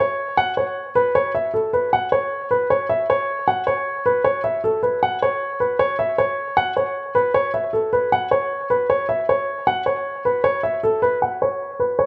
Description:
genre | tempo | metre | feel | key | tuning
hip hop | 155 BPM | 4/4 | half-time | unclear | A4 = 440 Hz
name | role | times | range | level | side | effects
dark baby grand piano | melody | 0.0-12.1 s | A4 to F#5 | -20 LUFS | equal | low-pass filter
room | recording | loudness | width
moderate scoring stage reverb, RT60 1.7 s, small room ambience | none | -21 LUFS | mono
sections
0.0-11.2 A section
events
none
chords
none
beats
| 0.38 0.77 1.15 1.54 | 1.93 2.31 2.70 3.09 | 3.48 3.86 4.25 4.64 | 5.02 5.41 5.80 6.19 | 6.57 6.96 7.35 7.73 | 8.12 8.51 8.89 9.28 | 9.67 10.06 10.44 10.83 | 11.22 11.61 11.99

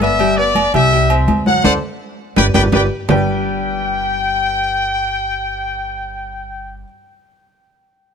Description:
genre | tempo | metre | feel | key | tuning
latin, salsa | 166 BPM | 4/4 | straight | G major | A4 = 435 Hz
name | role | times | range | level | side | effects
clear trumpet section | melody | 0.0-6.8 s | B4 to G5 | -18 LUFS | left 2 dB | none
clear grand piano | accompaniment | 0.0-6.8 s | F#3 to G5 | -20 LUFS | left 1 dB | none
upright bass | bass | 0.0-6.8 s | G1 to D2 | -21 LUFS | right 1 dB | none
agogo bells and timbales | percussion | 0.0-3.2 s | none | -22 LUFS | right 6 dB | none
congas | percussion | 0.0-3.2 s | none | -19 LUFS | left 1 dB | none
room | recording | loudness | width
light reverb | close, detailed microphones | -13 LUFS | side -7 dB against mid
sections
0.0-3.1 A section; 3.1-6.0 B section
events
drum fill 1.6-3.1; band accent 1.6-3.1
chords
0.0 G; 0.9 C; 1.6 D7(no3); 2.4 G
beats
| 0.20 0.56 0.92 1.28 | 1.65 2.01 2.37 2.73 | 3.09 3.46 3.82 4.18 | 4.54 4.91 5.27 5.63

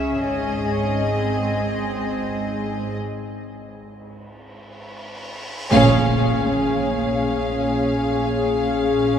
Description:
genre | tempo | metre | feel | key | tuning
cinematic, suspense film score | free time | none | none | Bb minor from 5.7 s | A4 = 440 Hz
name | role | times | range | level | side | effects
dark studio violin section | melody | 0.0-9.2 s | D#5 to F5 | -28 LUFS | left 3 dB | none
dark studio violin section | second line | 0.0-9.2 s | G#4 | -28 LUFS | left 2 dB | none
warm studio viola section | accompaniment | 0.0-9.2 s | B#3 to C#4 | -25 LUFS | equal | none
rich studio double bass section | bass | 0.0-9.2 s | G#1 to C#2 | -28 LUFS | right 3 dB | none
warm studio cello section | bass | 0.0-9.2 s | G#2 to C#3 | -26 LUFS | right 3 dB | none
cymbal swell and impact | sound effects | 4.5-8.4 s | none | -33 LUFS | right 1 dB | none
mellow French horn section | sustained chords | 5.7-9.2 s | Db4 to Ab4 | -23 LUFS | left 4 dB | none
timpani | percussion | 5.7-7.0 s | Bb2 | -31 LUFS | left 1 dB | none
room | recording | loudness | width
wet cathedral reverb, RT60 5.5 s | recorded in a church or concert hall | -19 LUFS | side -8 dB against mid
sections
0.0-5.7 A section; 5.7-9.2 B section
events
break 3.0-5.7; cymbal swell 4.5-5.7; band accent 5.7-6.6; impact 5.7-8.4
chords
0.3 G#; 3.0 N.C.; 5.7 Bbm7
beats
free time

